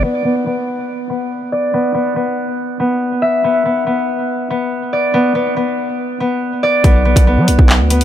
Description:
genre	hip hop, drill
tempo	141 BPM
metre	4/4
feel	half-time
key	B minor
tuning	A4 = 440 Hz
part	concert harp	arpeggios	0.0-8.0 s	B3 to E5	-15 LUFS	left 1 dB	low-pass filter, tape echo
part	distorted 808-style bass	bass	0.0, 6.8-8.0 s	B1 to F#3	-12 LUFS	equal	distortion
part	drill drum kit	drums	6.8-8.0 s	handclaps, hi-hat, kick drum	-12 LUFS	equal	none
room	light reverb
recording	none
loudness	-13 LUFS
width	side -11 dB against mid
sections	0.0-6.8 A section; 6.8-8.0 B section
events	filter sweep on harp 0.0-6.8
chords	0.0 Bm; 1.7 E5; 6.8 Bm

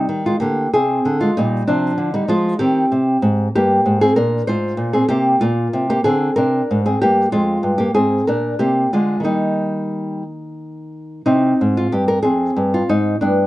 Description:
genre	classical, baroque-style dance for nylon-string guitar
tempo	63 BPM (dotted quarters)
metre	6/8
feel	rubato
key	C minor, Eb major from 3.5 s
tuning	A4 = 443 Hz
part	nylon-string guitar	solo	0.0-13.5 s	F2 to C5	-15 LUFS	equal	none
room	light reverb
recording	nothing above 10.9 kHz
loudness	-15 LUFS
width	side -17 dB against mid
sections	0.0-11.3 A section; 11.3-13.5 A section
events	none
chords	0.0 Cm (rootless); 0.7 Bb13; 1.7 Cm; 3.5 Gmadd11; 4.5 Fm/Ab; 5.4 Bb; 6.3 C5; 7.3 Fm; 8.3 Bb; 9.2 Eb; 11.3 Cm; 12.2 Fm

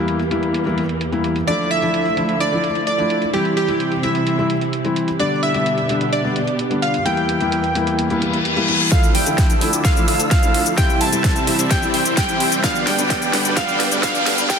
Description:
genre	EDM, festival progressive house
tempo	129 BPM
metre	4/4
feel	straight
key	D minor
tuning	A4 = 440 Hz
part	felt-muted upright piano	accompaniment	0.0-14.6 s	D3 to E4	-22 LUFS	left 2 dB	sidechain pumping
part	dark studio string section	sustained chords	0.0-14.6 s	D2 to E6	-25 LUFS	right 2 dB	sidechain pumping, low-pass filter
part	big-room dance drum kit	drums	0.1-14.6 s	hi-hat, shaker, snare drum	-24 LUFS	equal	overdrive, high-pass filter on hats, low-pass filter on hats, high-pass filter on snare, low-pass filter on snare, high-pass filter on perc, low-pass filter on perc
part	plucky unison lead	melody	1.5-14.6 s	G4 to A5	-21 LUFS	right 1 dB	digital delay
part	reverse cymbal and riser	sound effects	8.2-14.6 s	none	-25 LUFS	left 2 dB	none
part	supersaw chords	riff	8.9-14.6 s	F3 to G5	-23 LUFS	right 1 dB	phaser, sidechain pumping, low-pass filter
part	fat analog bass	bass	8.9-14.6 s	B1 to E2	-33 LUFS	equal	none
part	electronic kick drum	drums	8.9-14.6 s	none	-18 LUFS	equal	overdrive
room	moderate lush hall reverb, RT60 2.5 s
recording	dense, heavily limited modern master, high-pass filter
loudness	-16 LUFS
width	side -6 dB against mid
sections	0.0-8.9 A section; 8.9-14.6 B section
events	reverse cymbal 8.2-8.9; build-up 8.9-14.6; drum fill 8.9-14.6; filter sweep on supersaw synth 8.9-14.6; filter sweep 8.9-14.6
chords	0.0 Edim; 1.5 Dmadd9; 3.3 C; 5.2 G/B; 7.1 Edim; 8.9 Dmadd9; 10.8 C; 12.6 G/B

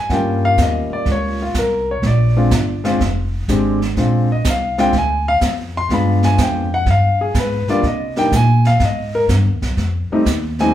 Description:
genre	jazz piano trio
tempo	124 BPM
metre	4/4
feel	swing 68% on 8ths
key	Bb mixolydian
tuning	A4 = 440 Hz
part	warm concert grand piano	melody	0.0-10.7 s	G3 to C6	-17 LUFS	left 1 dB	none
part	upright bass	bass	0.1-10.7 s	F1 to C3	-18 LUFS	equal	none
part	jazz brush drum kit	drums	0.1-10.7 s	brushed snare drum, hi-hat, kick drum, snare drum	-23 LUFS	right 2 dB	none
room	wet large studio reverb, RT60 0.8 s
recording	band playing live in one room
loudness	-14 LUFS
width	side -12 dB against mid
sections	0.0-10.7 A section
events	grand piano solo 0.0-10.7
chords	0.1 Eb7; 2.0 Bb7; 5.9 G7b9; 7.8 Cm7; 9.8 F7

